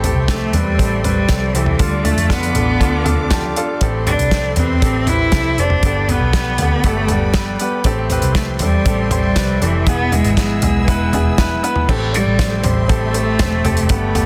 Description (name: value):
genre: piano-driven pop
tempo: 119 BPM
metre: 4/4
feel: straight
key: A minor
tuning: A4 = 439 Hz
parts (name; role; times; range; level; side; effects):
- clear baby grand piano; accompaniment; 0.0-14.3 s; G2 to A5; -24 LUFS; equal; none
- warm symphonic string section; sustained chords; 0.0-14.3 s; A4 to E6; -32 LUFS; equal; none
- vintage muted picked electric bass; bass; 0.0-14.3 s; E1 to F2; -22 LUFS; equal; none
- natural country drum kit; drums; 0.0-14.3 s; crash cymbal, hi-hat, kick drum, snare drum, toms; -21 LUFS; equal; none
- rich cello; melody; 0.3-14.3 s; E3 to E4; -22 LUFS; equal; none
room: light reverb, studio reverb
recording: dense, heavily limited modern master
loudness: -16 LUFS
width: mono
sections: 0.0-11.9 A section; 11.9-14.3 B section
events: grand piano fill 3.1-3.8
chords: 0.0 Am7; 1.8 Dm; 3.8 Am7; 5.8 Gadd9; 7.8 Am7; 9.9 E; 11.9 Am7